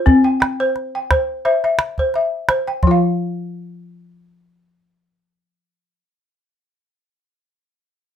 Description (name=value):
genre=west african traditional, West African string and xylophone music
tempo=87 BPM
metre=4/4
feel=swing 54% on 16ths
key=unclear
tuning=A4 = 442 Hz
part: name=balafon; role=arpeggios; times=0.0-5.9 s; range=F3 to G5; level=-16 LUFS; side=left 2 dB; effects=none
part: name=calabash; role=percussion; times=0.1-3.1 s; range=none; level=-16 LUFS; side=right 1 dB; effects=none
room=light reverb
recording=close, detailed microphones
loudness=-16 LUFS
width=side -9 dB against mid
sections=0.0-2.8 A section; 2.8-5.6 B section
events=none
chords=0.1 C; 2.8 N.C.